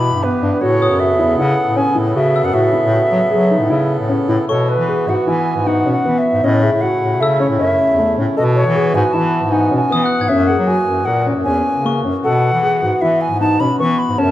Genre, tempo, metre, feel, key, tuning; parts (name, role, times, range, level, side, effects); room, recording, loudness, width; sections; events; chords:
contemporary instrumental, chamber music in an uneven meter; 155 BPM; 5/4; straight; B mixolydian; A4 = 440 Hz
bright reedy baroque flute; melody; 0.0-14.3 s; B4 to C#6; -18 LUFS; equal
hand-pumped harmonium; sustained chords; 0.0-14.3 s; C#3 to A4; -23 LUFS; right 3 dB
dark concert grand piano; arpeggios; 0.0-14.3 s; A3 to A#4; -18 LUFS; left 1 dB
clear bass clarinet; bass; 0.0-14.3 s; E2 to F#3; -19 LUFS; left 1 dB
glockenspiel with hard plastic mallets; texture; 0.8-12.4 s; C#6 to G#6; -27 LUFS; left 1 dB
moderate recital hall reverb, RT60 1.4 s; -13 LUFS; side -13 dB against mid
0.0-4.5 A section; 4.5-14.3 B section
0.0 G6; 0.6 Aadd9; 4.5 Bsus4; 6.4 A; 8.4 Bsus4; 10.3 F#7; 12.2 Bsus4